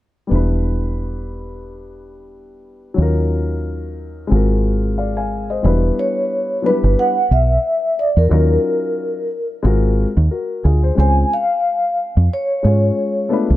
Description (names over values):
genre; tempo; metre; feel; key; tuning
hip hop; 90 BPM; 4/4; swing 57% on 16ths; unclear; A4 = 440 Hz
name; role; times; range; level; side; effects
dark concert grand piano; accompaniment; 0.3-13.6 s; F#3 to G#5; -21 LUFS; left 4 dB; none
deep dub fingered electric bass; bass; 0.3-13.6 s; E1 to G#2; -16 LUFS; equal; none
vibraphone with soft mallets; melody; 6.0-13.3 s; A#4 to G#5; -18 LUFS; equal; analog delay
room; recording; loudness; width
studio ambience; dark, warm production; -15 LUFS; side -15 dB against mid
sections
0.3-5.6 A section; 5.6-13.6 B section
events
none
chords
0.3 Em7; 3.0 D#m9; 4.3 G#13; 5.6 Em7; 8.3 D#m9; 9.6 G#13; 11.0 C#maj7